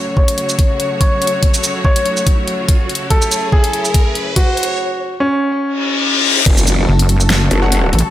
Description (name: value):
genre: heavy wobble dubstep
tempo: 143 BPM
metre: 4/4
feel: swing 54% on 16ths, half-time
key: F# minor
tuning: A4 = 441 Hz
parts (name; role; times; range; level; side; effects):
- warm grand piano; melody; 0.0-6.4 s; C#4 to C#5; -19 LUFS; equal; low-pass filter, tape echo
- rich symphonic string section; sustained chords; 0.0-8.1 s; C#3 to C#5; -22 LUFS; left 2 dB; sidechain pumping, low-pass filter
- riser, reverse cymbal and impact; sound effects; 1.5-8.1 s; none; -20 LUFS; left 2 dB; none
- electronic kick drum; drums; 0.2-6.6 s; none; -13 LUFS; equal; overdrive, studio reverb
- dubstep drum kit; drums; 0.3-8.1 s; crash cymbal, hi-hat, shaker, snare drum; -19 LUFS; equal; overdrive, studio reverb
- growl bass; bass; 6.5-7.9 s; F#1; -14 LUFS; equal; chorus, overdrive
- pulsing pluck wobble bass; bass; 6.9-8.0 s; F#1 to A1; -12 LUFS; equal; chorus, overdrive
- supersaw stab; stabs; 7.6-7.9 s; F#4 to F#5; -22 LUFS; left 1 dB; tape echo
room: light reverb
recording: none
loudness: -12 LUFS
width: side -13 dB against mid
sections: 0.0-6.5 A section; 6.5-8.1 B section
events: build-up 0.0-6.5; riser 1.5-4.8; filter sweep on grand piano 0.0-6.5; drum fill 3.1-4.8; reverse cymbal 5.8-6.5; drop 6.5-8.1; impact 6.5-8.1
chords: 0.0 F#m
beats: 0.17 0.59 1.01 | 1.43 1.85 2.27 2.69 | 3.10 3.52 3.94 4.36 | 4.78 5.20 5.62 6.04 | 6.46 6.88 7.30 7.72